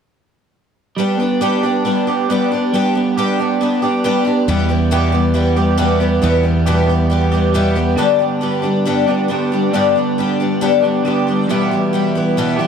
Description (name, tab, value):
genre	rock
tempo	137 BPM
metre	4/4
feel	straight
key	unclear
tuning	A4 = 439 Hz
part	picked twelve-string acoustic guitar	accompaniment	1.0-12.7 s	E2 to G4	-17 LUFS	left 4 dB	plate reverb
part	electric guitar through a small old amp	riff	1.0-12.7 s	E2 to G4	-17 LUFS	right 3 dB	analog chorus
part	fingered electric bass	bass	4.5-7.9 s	E2	-16 LUFS	equal	none
room	moderate studio reverb, RT60 0.7 s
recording	none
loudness	-13 LUFS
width	side -7 dB against mid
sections	1.0-8.0 A section; 8.0-12.7 B section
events	none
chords	1.0 G; 4.5 Em; 8.0 G; 11.5 Em